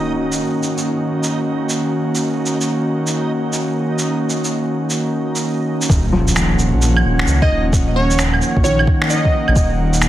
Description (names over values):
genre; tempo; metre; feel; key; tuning
future garage; 131 BPM; 4/4; swing 65% on 16ths; Eb minor; A4 = 440 Hz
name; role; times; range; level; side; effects
felt-muted upright piano; accompaniment; 0.0-10.1 s; Eb3 to F3; -25 LUFS; left 2 dB; sidechain pumping, analog delay
airy breathy pad; sustained chords; 0.0-10.1 s; Eb3 to Gb5; -19 LUFS; equal; chorus, sidechain pumping
sub drop and impact; sound effects; 0.0-0.4, 5.9-7.7 s; none; -25 LUFS; equal; none
backwards swelling texture; texture; 0.0-5.9 s; Eb4; -30 LUFS; right 2 dB; built-in reverb
electronic shaker, finger snaps and claves; drums; 0.3-10.1 s; none; -22 LUFS; right 2 dB; soft clipping on snare
dark detuned saw bass; bass; 5.9-10.1 s; Eb1 to Db2; -17 LUFS; equal; sidechain pumping
electronic kick drum; drums; 5.9-9.7 s; none; -16 LUFS; equal; none
plucky unison lead; melody; 7.4-9.8 s; Db5 to Eb5; -21 LUFS; right 1 dB; tape echo
room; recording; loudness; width
light reverb, digital ambience; dense, heavily limited modern master, vinyl crackle; -15 LUFS; side -13 dB against mid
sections
0.0-5.9 A section; 5.9-10.1 B section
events
impact 0.0-0.4, 5.9-7.7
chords
0.0 Ebm7